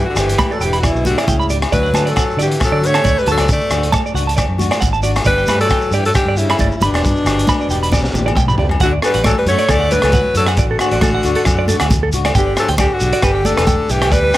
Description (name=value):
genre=highlife guitar band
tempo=136 BPM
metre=4/4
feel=swing 54% on 16ths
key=D major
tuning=A4 = 440 Hz
part: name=clear alto saxophone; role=melody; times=0.0-14.4 s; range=D4 to D5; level=-18 LUFS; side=equal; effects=analog delay
part: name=edgy tenor saxophone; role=second line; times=0.0-14.4 s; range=B2 to A3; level=-25 LUFS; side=left 3 dB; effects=none
part: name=fingered electric bass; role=bass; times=0.0-14.3 s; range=E1 to D3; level=-19 LUFS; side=equal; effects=none
part: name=nylon-string guitar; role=accompaniment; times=0.2-14.4 s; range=F#3 to G4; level=-26 LUFS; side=left 6 dB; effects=none
part: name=crunchy breakbeat drum kit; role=drums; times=0.2-14.4 s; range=hi-hat, kick drum, rim click, snare drum, toms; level=-19 LUFS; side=equal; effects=none
part: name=agogo bells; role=percussion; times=0.2-14.4 s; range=none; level=-26 LUFS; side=left 5 dB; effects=none
part: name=shekere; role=percussion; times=0.2-14.4 s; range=none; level=-24 LUFS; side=right 1 dB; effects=none
part: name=clean electric guitar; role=arpeggios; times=0.4-14.4 s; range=A4 to B5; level=-22 LUFS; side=right 5 dB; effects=analog delay
part: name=congas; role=percussion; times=0.4-14.2 s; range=none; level=-25 LUFS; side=equal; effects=none
room=light reverb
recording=none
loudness=-12 LUFS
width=side -15 dB against mid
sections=0.0-8.8 A section; 8.8-14.4 B section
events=drum fill 7.9-8.8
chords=0.0 G; 1.7 D; 5.3 G; 8.8 D; 12.3 G